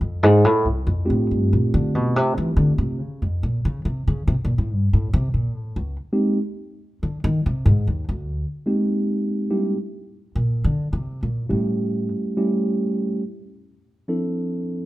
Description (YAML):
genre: jazz ballad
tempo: 70 BPM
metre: 4/4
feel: swing 69% on 8ths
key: F major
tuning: A4 = 440 Hz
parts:
  - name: upright bass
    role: bass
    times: 0.0-12.1 s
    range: C2 to E3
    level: -19 LUFS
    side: equal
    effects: none
  - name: mellow tine electric piano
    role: accompaniment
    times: 1.1-14.9 s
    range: F3 to A4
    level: -22 LUFS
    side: right 1 dB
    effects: none
room: moderate large studio reverb, RT60 1.3 s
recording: minimal, uncompressed stereo recording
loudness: -20 LUFS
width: side -17 dB against mid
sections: 0.0-14.9 A section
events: upright bass solo 0.0-14.9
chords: 0.0 F69; 3.0 Eb13; 6.4 Abmaj9; 9.8 Bbadd9; 11.5 A7; 13.2 Dm9